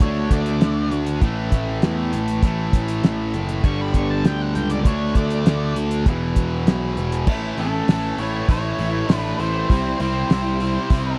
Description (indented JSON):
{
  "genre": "classic rock",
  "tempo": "99 BPM",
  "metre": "4/4",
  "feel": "straight",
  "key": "unclear",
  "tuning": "A4 = 440 Hz",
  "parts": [
    { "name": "octave-fuzz lead guitar", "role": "melody", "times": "0.0-11.2 s", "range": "A4 to C#6", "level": "-30 LUFS", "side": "equal", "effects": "distortion, slapback echo" },
    { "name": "tight distorted guitar", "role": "riff", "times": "0.0-11.2 s", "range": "E2 to D4", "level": "-27 LUFS", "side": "equal", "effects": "distortion" },
    { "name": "fuzz picked electric bass", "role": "bass", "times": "0.0-11.1 s", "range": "E1 to E2", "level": "-26 LUFS", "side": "equal", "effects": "overdrive" },
    { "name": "cloth-damped thuddy drum kit", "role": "drums", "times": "0.0-11.0 s", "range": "crash cymbal, hi-hat, kick drum, snare drum", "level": "-20 LUFS", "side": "equal", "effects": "none" },
    { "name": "octave-fuzz lead guitar", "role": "second line", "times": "7.6-11.2 s", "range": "C#4 to E4", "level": "-32 LUFS", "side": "equal", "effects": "distortion" }
  ],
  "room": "little or no reverb",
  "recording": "dry, close 1970s-style studio recording",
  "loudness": "-21 LUFS",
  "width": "mono",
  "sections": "0.0-7.3 A section; 7.3-11.2 B section",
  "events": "lead electric guitar solo 0.0-7.3",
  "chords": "0.0 D5; 1.2 A5; 3.6 G5; 4.9 D5; 6.1 E5; 7.3 A; 9.7 C"
}